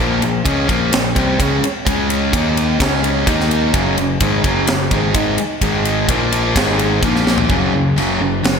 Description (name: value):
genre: hard rock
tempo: 128 BPM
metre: 4/4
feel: straight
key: unclear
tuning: A4 = 439 Hz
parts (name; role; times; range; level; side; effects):
- sludgy distorted guitar; riff; 0.0-8.6 s; Gb2 to Eb4; -18 LUFS; left 8 dB; overdrive, slapback echo
- tight distorted guitar; riff; 0.0-8.6 s; Gb2 to Eb4; -19 LUFS; right 9 dB; distortion, slapback echo
- modern bright picked electric bass; bass; 0.0-8.6 s; Gb1 to Eb2; -22 LUFS; equal; none
- tight metal drum kit; drums; 0.2-8.6 s; crash cymbal, kick drum, ride cymbal, snare drum, toms; -19 LUFS; equal; none
room: moderate lush hall reverb, RT60 2.4 s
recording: big arena sound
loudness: -14 LUFS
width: side -6 dB against mid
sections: 0.0-7.5 A section; 7.5-8.6 B section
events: drum fill 7.3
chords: 0.0 Bbm; 1.9 Db5; 2.3 Eb5; 2.8 Db5; 3.3 Eb5; 3.7 Gb5; 5.6 Ab5; 6.1 Bb5; 6.6 Ab5; 7.0 Bb5; 7.5 Gb5